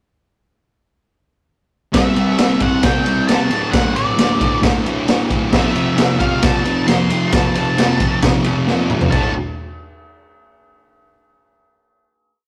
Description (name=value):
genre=garage rock duo or trio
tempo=134 BPM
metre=4/4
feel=straight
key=unclear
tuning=A4 = 440 Hz
part: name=thick fuzz guitar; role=riff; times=1.9-9.3 s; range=D2 to C4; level=-20 LUFS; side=equal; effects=distortion
part: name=raw garage drum kit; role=drums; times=1.9-9.2 s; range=crash cymbal, kick drum, ride cymbal, snare drum, toms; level=-19 LUFS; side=equal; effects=none
part: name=octave-fuzz lead guitar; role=melody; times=2.0-9.3 s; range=D5 to C6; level=-25 LUFS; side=equal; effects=distortion
room=moderate stone room reverb, RT60 1.2 s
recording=rough rehearsal-room recording, tube saturation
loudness=-16 LUFS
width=mono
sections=1.9-9.1 pre-chorus; 9.1-10.9 final chord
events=drum fill 8.7-9.1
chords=1.9 C; 3.5 D5; 5.5 F; 9.1 D5